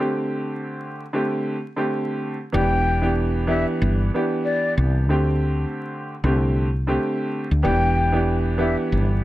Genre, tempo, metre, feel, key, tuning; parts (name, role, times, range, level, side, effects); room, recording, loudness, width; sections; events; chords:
hip hop, boom-bap hip-hop; 94 BPM; 4/4; swing 58% on 16ths; E minor; A4 = 439 Hz
warm upright piano; accompaniment; 0.0-9.2 s; D3 to G4; -23 LUFS; right 1 dB; high-pass filter, low-pass filter
breathy mellow silver concert flute; melody; 2.5-8.8 s; D5 to G5; -25 LUFS; left 2 dB; high-pass filter, low-pass filter, digital delay
woody fretless electric bass; bass; 2.5-9.2 s; E1 to D2; -21 LUFS; equal
light reverb; vinyl crackle; -20 LUFS; side -16 dB against mid
0.0-2.5 A section; 2.5-9.2 B section
0.0 D7sus4; 2.5 Em7; 5.1 D7sus4; 7.6 Em7